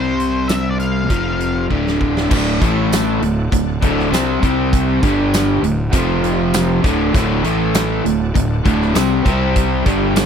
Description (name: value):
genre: classic rock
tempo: 99 BPM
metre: 4/4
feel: straight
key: unclear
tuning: A4 = 439 Hz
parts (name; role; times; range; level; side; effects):
- octave-fuzz lead guitar; melody; 0.0-1.7 s; C5 to F5; -25 LUFS; left 3 dB; distortion, tape echo
- distorted electric guitar; riff; 0.0-10.3 s; D2 to C4; -21 LUFS; right 14 dB; distortion
- overdriven electric guitar; riff; 0.0-10.3 s; D2 to C4; -20 LUFS; left 11 dB; none
- fuzz fingered electric bass; bass; 0.0-10.3 s; D1 to C2; -21 LUFS; equal; overdrive
- big rock drum kit; drums; 0.2-10.3 s; crash cymbal, hi-hat, kick drum, snare drum, tambourine; -21 LUFS; equal; none
- bright tonewheel organ; sustained chords; 2.0-10.3 s; B3 to A5; -31 LUFS; equal; none
- raw garage guitar; riff; 2.3-10.3 s; D2 to C4; -22 LUFS; equal; overdrive
room: little or no reverb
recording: dry, close 1970s-style studio recording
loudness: -14 LUFS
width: side -7 dB against mid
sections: 0.0-2.3 A section; 2.3-10.3 B section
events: drum fill 1.7-2.3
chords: 0.0 C5; 1.1 F5; 1.7 D5; 2.6 A5; 3.2 D; 4.4 C5; 5.0 G5; 5.6 D5; 5.9 F5; 6.8 D; 7.4 A5; 8.0 D; 9.2 C5